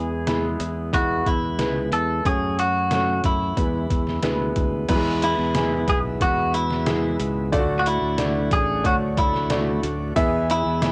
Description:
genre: piano-driven pop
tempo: 91 BPM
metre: 4/4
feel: straight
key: unclear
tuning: A4 = 437 Hz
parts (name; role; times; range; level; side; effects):
- clean electric guitar; melody; 0.0-10.9 s; E4 to A4; -27 LUFS; equal; cassette tape
- clear baby grand piano; accompaniment; 0.0-10.9 s; D3 to E5; -28 LUFS; equal; none
- fingered electric bass; bass; 0.0-10.9 s; A1 to F#2; -29 LUFS; equal; none
- trip hop sampler-style drum kit; drums; 0.3-10.9 s; crash cymbal, hi-hat, kick drum, snare drum; -29 LUFS; equal; overdrive, cassette tape
- overdriven tonewheel organ; sustained chords; 4.9-10.9 s; G#2 to G#4; -35 LUFS; equal; none
room: light reverb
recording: home recording on cassette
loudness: -22 LUFS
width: mono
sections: 0.0-4.9 A section; 4.9-10.9 B section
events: none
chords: 0.0 E; 2.3 F#m; 3.6 E; 7.5 D; 10.2 E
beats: 0.27 0.93 1.59 | 2.25 2.91 3.57 4.23 | 4.89 5.55 6.21 6.87 | 7.53 8.19 8.85 9.51 | 10.16 10.82

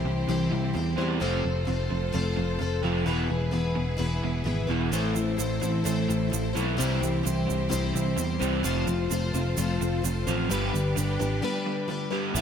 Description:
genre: folk rock and heartland rock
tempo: 129 BPM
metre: 4/4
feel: straight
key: unclear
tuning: A4 = 440 Hz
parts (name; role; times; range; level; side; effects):
- picked plugged-in twelve-string acoustic guitar; accompaniment; 0.0-12.4 s; A2 to C5; -30 LUFS; left 4 dB; none
- bright studio string section; sustained chords; 0.0-12.3 s; B3 to C5; -37 LUFS; right 2 dB; none
- crunchy overdriven guitar; riff; 0.0-12.4 s; E2 to E4; -30 LUFS; right 2 dB; wide subtle chorus
- picked electric bass; bass; 0.0-12.4 s; E1 to E2; -29 LUFS; right 1 dB; none
- egg shaker; percussion; 4.9-12.4 s; none; -37 LUFS; right 14 dB; none
room: moderate church reverb, RT60 3.3 s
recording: dreamy mix soaked in reverb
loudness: -24 LUFS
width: side -8 dB against mid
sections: 0.0-12.4 A section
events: break 11.4-12.4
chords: 0.0 C; 1.2 F; 3.1 E; 4.9 Am; 6.8 C; 8.6 F; 10.5 G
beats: 0.28 0.75 | 1.21 1.67 2.14 2.60 | 3.06 3.53 3.99 4.46 | 4.92 5.39 5.85 6.32 | 6.78 7.25 7.71 8.18 | 8.64 9.11 9.57 10.04 | 10.50 10.96 11.43 11.89 | 12.35

